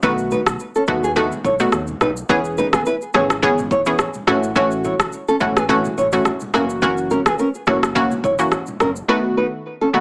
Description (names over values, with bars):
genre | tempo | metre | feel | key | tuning
afrobeats | 106 BPM | 4/4 | swing 55% on 16ths | E major | A4 = 439 Hz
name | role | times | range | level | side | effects
analog pluck | accompaniment | 0.0-10.0 s | D#3 to G#4 | -18 LUFS | equal | chorus, plate reverb
nylon-string guitar | riff | 0.0-9.9 s | B3 to C#5 | -19 LUFS | equal | tape echo
sub bass with octave | bass | 0.0-9.0 s | E1 to D#2 | -32 LUFS | equal | none
deep house drum kit | drums | 0.0-9.1 s | kick drum, rim click, shaker | -20 LUFS | equal | none
congas | percussion | 0.3-9.0 s | none | -33 LUFS | equal | none
room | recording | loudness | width
moderate studio reverb, RT60 0.6 s | small speaker sound | -16 LUFS | side -32 dB against mid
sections
0.0-10.0 A section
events
none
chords
0.0 B7; 2.3 E6; 4.3 A6; 6.5 F#7; 9.1 B7